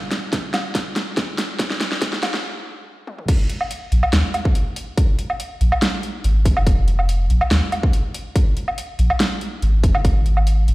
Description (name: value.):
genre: deep dubstep.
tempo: 142 BPM.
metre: 4/4.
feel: half-time.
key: unclear.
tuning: A4 = 439 Hz.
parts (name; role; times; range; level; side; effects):
dubstep drum kit; drums; 0.1-10.7 s; crash cymbal, hi-hat, snare drum, toms, woodblock; -23 LUFS; equal; none.
electronic kick drum; drums; 0.3-10.1 s; none; -18 LUFS; equal; none.
soft dub sub bass; bass; 3.9-10.7 s; F1 to Eb2; -16 LUFS; equal; none.
room: light reverb, digital ambience.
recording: played on a big sound system in a bare room, stone room reverb, high-pass filter.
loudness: -17 LUFS.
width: side -19 dB against mid.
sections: 0.0-3.3 A section; 3.3-10.7 B section.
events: build-up 0.0-3.3; drum fill 0.0-2.4, 3.1; stop 2.4-3.3; drop 3.3-10.7.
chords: none.